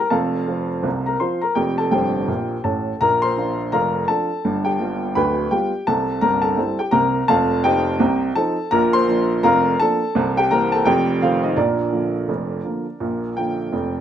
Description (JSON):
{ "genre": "ragtime piano", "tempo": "84 BPM", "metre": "2/4", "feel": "swing 60% on 16ths", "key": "Bb major", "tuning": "A4 = 440 Hz", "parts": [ { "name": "clear upright piano", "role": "solo", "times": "0.0-14.0 s", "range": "D1 to C6", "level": "-17 LUFS", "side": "equal", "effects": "none" } ], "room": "moderate studio reverb, RT60 0.7 s", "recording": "rough home demo mix, nothing above 10.3 kHz", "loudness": "-17 LUFS", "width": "side -9 dB against mid", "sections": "0.0-14.0 A section", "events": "upright piano fill 1.9-3.0", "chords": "0.1 F; 3.0 Bb; 4.4 G7; 5.9 C7; 7.3 F7; 8.7 Bb; 10.1 C7; 10.9 F7; 11.6 Bb", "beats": "| 0.14 0.85 | 1.57 2.29 | 3.01 3.72 | 4.43 5.15 | 5.86 6.57 | 7.29 8.00 | 8.71 9.42 | 10.13 10.85 | 11.57 12.29 | 13.01 13.73" }